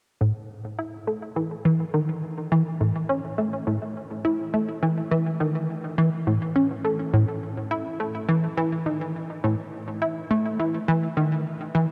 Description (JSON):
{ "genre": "ambient", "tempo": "104 BPM", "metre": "4/4", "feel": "straight", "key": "A lydian", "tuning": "A4 = 440 Hz", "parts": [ { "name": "plucky analog bass", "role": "solo", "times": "0.2-11.9 s", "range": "A2 to E4", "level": "-25 LUFS", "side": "equal", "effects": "analog chorus, cassette tape, delay" } ], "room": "wet huge ambient reverb, RT60 7.7 s", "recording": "cassette tape", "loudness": "-25 LUFS", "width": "mono", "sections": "0.2-11.9 A section", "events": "none", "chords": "none" }